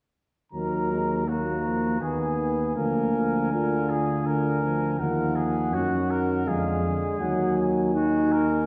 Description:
classical, brass quintet; 82 BPM; 3/4; straight; Eb minor; A4 = 438 Hz
dark trumpet; melody; 0.5-8.7 s; F5 to Bb5; -35 LUFS; equal
warm trumpet; second line; 0.5-8.7 s; Gb4 to Bb4; -34 LUFS; equal
mellow French horn; accompaniment; 0.5-8.7 s; F3 to F4; -29 LUFS; equal
warm trombone; accompaniment; 0.5-8.7 s; D3 to Ab3; -35 LUFS; equal
mellow tuba; bass; 0.5-8.7 s; D2 to Gb2; -30 LUFS; equal
wet recital hall reverb, RT60 1.6 s; recorded in a church or concert hall; -25 LUFS; mono
0.5-8.7 A section
0.5 Ebm; 2.0 Abm/Eb; 2.8 Bb7/D; 5.0 Ebm; 6.5 Fm6; 7.2 Ebm
| 0.54 1.28 2.02 | 2.76 3.53 4.27 | 5.00 5.74 6.47 | 7.20 7.95

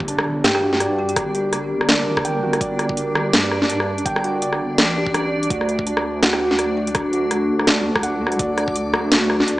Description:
half-time drum and bass; 166 BPM; 4/4; swing 57% on 16ths, half-time; G harmonic minor; A4 = 439 Hz
deep dark ambient pad; sustained chords; 0.8-9.6 s; G3 to D5; -27 LUFS; equal; chorus, built-in reverb, sidechain pumping
felt-muted upright piano; arpeggios; 0.0-9.6 s; D4 to G5; -25 LUFS; right 1 dB; dub echo
deep soft wobble bass; bass; 0.0-9.6 s; G1 to G2; -27 LUFS; equal; chorus
electronic kick drum; drums; 0.0-8.7 s; -28 LUFS; equal
impact; sound effects; 0.0-1.2 s; -37 LUFS; equal
backwards swelling texture; texture; 1.0-9.6 s; D4 to D5; -28 LUFS; left 1 dB; built-in reverb
drum and bass drum kit; drums; 0.1-9.6 s; hi-hat, rim click, snare drum; -19 LUFS; equal
kalimba; melody; 0.4-0.6, 6.2-6.4 s; F#4 to G4; -25 LUFS; right 1 dB; vintage 12-bit sampler grit, digital delay
moderate lush hall reverb, RT60 2.0 s, digital ambience; small speaker sound; -17 LUFS; side -17 dB against mid
0.0-9.6 A section
impact 0.0-1.2
0.0 Gm; 5.5 D
0.08 0.44 0.80 | 1.17 1.53 1.89 2.25 | 2.61 2.97 3.33 3.69 | 4.06 4.42 4.78 5.14 | 5.50 5.86 6.22 6.59 | 6.95 7.31 7.67 8.03 | 8.39 8.76 9.12 9.48

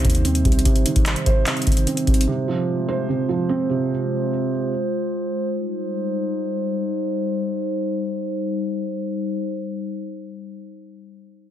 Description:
hip hop, trap; 148 BPM; 4/4; half-time; C minor; A4 = 444 Hz
felt-muted upright piano; accompaniment; 0.0-4.7 s; C3 to C5; -22 LUFS; right 4 dB; low-pass filter
glass harmonica; sustained chords; 0.0-9.5 s; G3 to C5; -25 LUFS; left 1 dB; low-pass filter
long sustained 808-style bass; bass; 0.0-0.6 s; C2 to Eb2; -21 LUFS; equal
booming analog drum machine; drums; 0.0-2.3 s; handclaps, hi-hat, kick drum; -18 LUFS; equal
studio reverb; dense, heavily limited modern master; -20 LUFS; side -10 dB against mid
0.0-5.5 A section; 5.5-8.8 B section
filter sweep 0.0-5.5
0.0 Cm; 2.3 Fm/C; 5.5 Cm
0.25 | 0.65 1.06 1.47 1.87 | 2.28 2.68 3.09 3.49 | 3.90 4.30 4.71 5.11 | 5.52 5.92 6.33 6.74 | 7.14 7.55 7.95 8.36

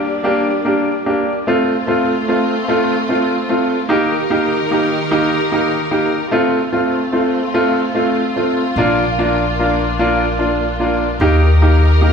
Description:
pop; 49 BPM (dotted quarters); 6/8; straight; Bb major; A4 = 440 Hz
clear concert grand piano; accompaniment; 0.0-12.1 s; A3 to G4; -15 LUFS; equal
warm studio string section; sustained chords; 0.0-12.1 s; Eb3 to Bb4; -21 LUFS; equal
upright bass; bass; 8.8-12.1 s; Bb1 to Eb2; -15 LUFS; left 1 dB
wet large studio reverb, RT60 1.4 s; band playing live in one room; -14 LUFS; side -6 dB against mid
0.0-12.1 A section
0.0 Bb6; 1.5 F; 3.9 Eb; 6.3 F; 8.8 Bb; 11.2 Eb
0.24 | 1.46 2.68 | 3.89 5.10 | 6.31 7.53 | 8.76 9.98 | 11.20

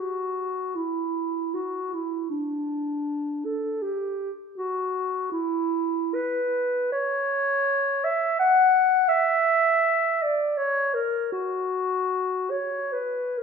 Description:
classical, free, expressive piece for unaccompanied clarinet; 65-86 BPM; 3/4; rubato; A4 = 440 Hz
dark clarinet; solo; 0.0-13.4 s; D4 to F#5; -23 LUFS; equal
wet scoring stage reverb, RT60 1.7 s; minimal, uncompressed stereo recording; -23 LUFS; side -6 dB against mid
0.0-13.4 A section
0.76 1.53 | 2.30 3.05 3.82 | 4.58 5.33 6.16 | 6.92 7.65 8.38 | 9.09 9.82 10.57 | 11.33 12.10 12.92

